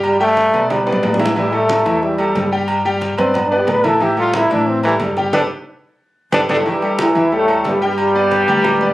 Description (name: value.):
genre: latin, salsa.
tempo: 181 BPM.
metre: 4/4.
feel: straight.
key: unclear.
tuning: A4 = 442 Hz.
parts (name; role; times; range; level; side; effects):
bright trombone; melody; 0.0-6.6 s; E3 to B4; -16 LUFS; equal; none.
bright concert grand piano; accompaniment; 0.0-8.9 s; E3 to G5; -18 LUFS; equal; none.
upright bass; bass; 0.0-8.9 s; G1 to B2; -25 LUFS; left 1 dB; none.
agogo bells and timbales; percussion; 0.0-8.8 s; none; -23 LUFS; right 2 dB; none.
congas; percussion; 0.0-8.9 s; none; -26 LUFS; equal; none.
mellow trombone section; melody; 6.5-8.9 s; G2 to E4; -15 LUFS; equal; none.
room: light reverb.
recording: recorded on a phone in the room, studio ambience.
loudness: -13 LUFS.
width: side -16 dB against mid.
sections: 0.0-6.7 A section; 6.7-8.9 B section.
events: trombone solo 0.0-6.7; drum fill 0.7-1.4, 6.2-6.7; band accent 5.3-6.7.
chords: 0.0 Gadd9; 1.4 A5; 2.7 Gadd9; 4.0 A5; 5.3 Gadd9; 6.7 A5; 8.0 G.